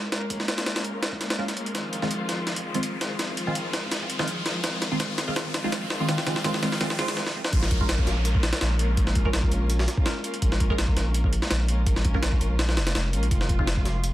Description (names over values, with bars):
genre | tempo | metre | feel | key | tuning
drum and bass, jungle | 166 BPM | 4/4 | swing 53% on 16ths | Bb minor | A4 = 440 Hz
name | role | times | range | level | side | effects
dark studio string section | sustained chords | 0.0-14.1 s | Eb3 to Bb4 | -32 LUFS | left 1 dB | vintage 12-bit sampler grit
riser and downlifter | sound effects | 0.3-10.4 s | none | -36 LUFS | equal | none
jungle sampler-style drum kit | drums | 0.1-14.1 s | hi-hat, kick drum, snare drum | -26 LUFS | equal | overdrive, high-pass filter on kick, high-pass filter on hats, high-pass filter on snare
filtered dub chord stab | stabs | 1.4-13.7 s | Eb3 to Bb4 | -31 LUFS | right 1 dB | phaser, lush chorus, dub echo
saturated sub bass | bass | 7.5-14.1 s | F1 to Bb1 | -25 LUFS | equal | none
room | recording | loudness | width
moderate plate reverb, RT60 1.5 s | dense, heavily limited modern master, vinyl crackle | -23 LUFS | side -15 dB against mid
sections
0.0-7.5 A section; 7.5-14.1 B section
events
build-up 0.0-7.5; riser 0.3-7.2; drum fill 1.7-7.2, 7.2-7.5; stop 7.2-7.5; drop 7.5-14.1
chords
0.0 Bbm7; 1.7 Fm7; 7.5 Bbm7; 13.3 Fm7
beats
| 0.30 0.66 1.02 1.39 | 1.75 2.11 2.47 2.83 | 3.19 3.56 3.92 4.28 | 4.64 5.00 5.36 5.72 | 6.08 6.45 6.81 7.17 | 7.53 7.89 8.25 8.62 | 8.98 9.34 9.70 10.06 | 10.42 10.78 11.15 11.51 | 11.87 12.23 12.59 12.95 | 13.31 13.68 14.04